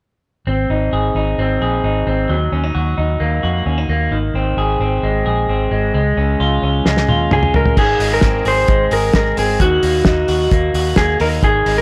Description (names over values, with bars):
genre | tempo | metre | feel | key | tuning
jangly indie pop | 131 BPM | 4/4 | straight | Ab major | A4 = 440 Hz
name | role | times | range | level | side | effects
electric guitar through a small old amp | arpeggios | 0.5-11.8 s | Eb3 to Ab4 | -21 LUFS | equal | analog delay
vintage muted fingered electric bass | bass | 0.5-11.8 s | Ab1 to F2 | -21 LUFS | equal | none
cloth-damped thuddy drum kit | drums | 6.9-11.8 s | crash cymbal, hi-hat, kick drum, snare drum, toms | -19 LUFS | equal | none
electric guitar through a small old amp | melody | 7.3-11.8 s | Gb4 to C5 | -18 LUFS | equal | none
room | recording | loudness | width
light reverb, small room ambience | none | -16 LUFS | mono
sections
0.5-7.8 A section; 7.8-11.8 B section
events
drum fill 6.9-7.8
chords
0.5 Ab; 2.3 Ebm; 4.1 Ab; 5.9 Db; 7.8 Ab; 9.6 Ebm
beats
| 0.47 0.92 1.38 1.84 | 2.29 2.75 3.21 3.66 | 4.12 4.58 5.03 5.49 | 5.95 6.40 6.86 7.32 | 7.77 8.23 8.69 9.14 | 9.60 10.06 10.51 10.97 | 11.43